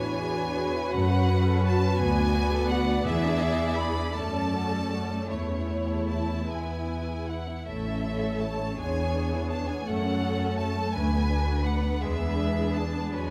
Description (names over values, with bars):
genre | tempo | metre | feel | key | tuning
classical, slow romantic movement for string orchestra | 50-58 BPM (dotted quarters) | 6/8 | rubato | unclear | A4 = 440 Hz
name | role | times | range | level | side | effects
clear chamber violin section | melody | 0.0-13.3 s | C#5 to B5 | -36 LUFS | equal | none
warm chamber violin section | second line | 0.0-13.3 s | G#3 to D5 | -37 LUFS | equal | none
rich studio viola section | accompaniment | 0.0-13.3 s | F#3 to F#4 | -34 LUFS | equal | none
rich chamber cello section | bass | 0.0-13.3 s | E4 to B4 | -38 LUFS | equal | none
rich chamber double bass section | bass | 0.0-13.3 s | A1 to F#2 | -30 LUFS | equal | none
room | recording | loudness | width
moderate recital hall reverb, RT60 1.6 s | none | -27 LUFS | mono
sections
0.0-13.3 A section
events
none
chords
0.0 E13; 0.9 F#m; 2.0 Bm/D; 3.1 E7; 4.2 F#m; 5.3 A/E; 6.5 E; 7.7 A; 8.8 E6; 9.9 F#m; 10.9 Bm7/D; 12.0 E7